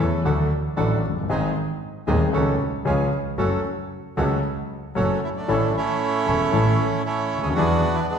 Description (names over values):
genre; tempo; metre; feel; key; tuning
tango; 115 BPM; 4/4; rubato; F# minor; A4 = 442 Hz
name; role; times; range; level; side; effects
dark concert grand piano; accompaniment; 0.0-7.8 s; D#1 to A4; -23 LUFS; left 3 dB; none
bandoneon; stabs; 0.0-7.8 s; B#3 to A4; -30 LUFS; right 4 dB; none
clear double bass; bass; 0.0-7.8 s; E1 to E2; -27 LUFS; right 3 dB; none
bandoneon; melody; 5.0-8.2 s; G#3 to G#4; -23 LUFS; right 4 dB; none
room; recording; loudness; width
wet scoring stage reverb, RT60 1.6 s; recorded in a church or concert hall; -20 LUFS; side -7 dB against mid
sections
0.0-5.5 A section; 5.5-8.2 B section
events
none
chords
0.3 D; 1.3 G#; 2.3 F#m/C#; 2.9 C#; 3.4 F#m; 5.5 A; 7.6 E7